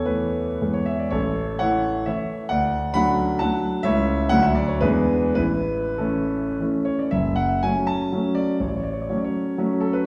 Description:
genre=classical, romantic triple-time dance for piano with dotted rhythms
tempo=90-145 BPM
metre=3/4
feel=rubato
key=A major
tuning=A4 = 440 Hz
part: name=warm grand piano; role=solo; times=0.0-10.1 s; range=F#1 to B5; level=-23 LUFS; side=equal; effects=none
room=wet recital hall reverb, RT60 1.4 s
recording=heard from further back in the room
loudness=-23 LUFS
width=mono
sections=0.0-7.1 A section; 7.1-10.1 B section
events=none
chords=0.0 Esus4; 0.6 E; 1.1 A; 2.5 D; 3.8 A/C#; 4.3 D; 4.8 E7; 5.4 A; 7.1 F#m; 8.6 F#m/A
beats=0.08 0.62 | 1.13 1.61 2.07 | 2.50 2.95 3.41 | 3.85 4.32 4.84 | 5.38 6.00 6.60 | 7.12 7.62 8.12 | 8.59 9.08 9.58

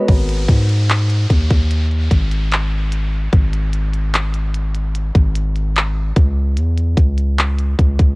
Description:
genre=contemporary R&B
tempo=74 BPM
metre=4/4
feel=straight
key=G# minor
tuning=A4 = 441 Hz
part: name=picked old ladder-braced acoustic guitar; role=arpeggios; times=0.0-0.7 s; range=G#3 to A#4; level=-26 LUFS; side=left 3 dB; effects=tape echo
part: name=long sustained 808-style bass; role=bass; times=0.1-8.2 s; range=G#1 to G#2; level=-16 LUFS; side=equal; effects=none
part: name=minimal click drum kit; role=drums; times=0.1-8.2 s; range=handclaps, hi-hat, kick drum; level=-15 LUFS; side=equal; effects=none
part: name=downlifter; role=sound effects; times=0.1-6.6 s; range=none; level=-31 LUFS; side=equal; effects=none
room=little or no reverb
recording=worn, warbling old tape, cassette tape, warbly pitch drift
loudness=-14 LUFS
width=side -28 dB against mid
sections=0.1-8.2 A section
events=none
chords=0.1 G#5; 6.2 C#m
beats=| 0.09 0.90 1.71 2.52 | 3.33 4.14 4.95 5.76 | 6.57 7.38

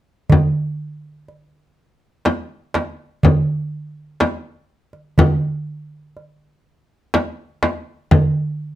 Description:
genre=Arabic maqam ensemble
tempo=123 BPM (eighths)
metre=10/8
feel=straight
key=none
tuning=none
part: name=darbuka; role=percussion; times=0.3-8.3 s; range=none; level=-18 LUFS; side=right 2 dB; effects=none
part: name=frame drum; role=percussion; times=0.3-8.3 s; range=none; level=-17 LUFS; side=left 2 dB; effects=none
room=moderate studio reverb, RT60 0.6 s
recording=none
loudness=-17 LUFS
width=side -14 dB against mid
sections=0.3-8.8 A section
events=none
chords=none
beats=| 0.31 0.80 1.28 1.77 2.26 2.75 3.23 3.72 4.21 4.69 | 5.18 5.67 6.16 6.64 7.13 7.62 8.10

